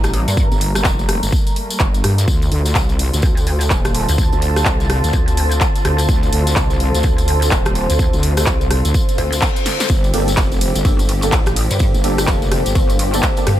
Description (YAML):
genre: bass house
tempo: 126 BPM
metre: 4/4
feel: swing 60% on 16ths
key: G minor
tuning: A4 = 440 Hz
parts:
  - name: clear chamber string section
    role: sustained chords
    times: 0.0-13.6 s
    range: D3 to A4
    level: -27 LUFS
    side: left 1 dB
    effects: sidechain pumping, low-pass filter
  - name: pulsing pluck wobble bass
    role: bass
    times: 0.0-13.6 s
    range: Eb1 to G2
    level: -18 LUFS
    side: equal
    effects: chorus, overdrive, sidechain pumping
  - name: big-room dance drum kit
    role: drums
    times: 0.0-13.6 s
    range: handclaps, hi-hat, ride cymbal, rim click, snare drum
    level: -22 LUFS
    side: equal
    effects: none
  - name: tambourine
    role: percussion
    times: 0.0-13.4 s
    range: none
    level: -28 LUFS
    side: left 3 dB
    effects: none
  - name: deep dark ambient pad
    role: texture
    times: 0.0-13.6 s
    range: C5 to Bb5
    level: -24 LUFS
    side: right 1 dB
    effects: chorus, built-in reverb, sidechain pumping
  - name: electronic kick drum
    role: drums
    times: 0.4-13.3 s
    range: none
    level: -17 LUFS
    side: equal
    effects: none
  - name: wobble bass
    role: bass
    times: 0.5-12.7 s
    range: F1 to G2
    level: -18 LUFS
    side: equal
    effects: chorus, overdrive, sidechain pumping
  - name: reverse cymbal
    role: sound effects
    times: 9.2-9.9 s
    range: none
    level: -27 LUFS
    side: left 7 dB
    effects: none
  - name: percussive organ stab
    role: stabs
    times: 10.1-13.5 s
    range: Bb3 to A4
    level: -24 LUFS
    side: right 2 dB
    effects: ensemble chorus, sidechain pumping, dub echo
room: little or no reverb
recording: none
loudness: -14 LUFS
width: side -12 dB against mid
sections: 0.0-13.6 A section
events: reverse cymbal 9.2-9.9; drum fill 9.7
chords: 0.0 Gmadd9; 2.3 Dm; 9.9 Gmadd9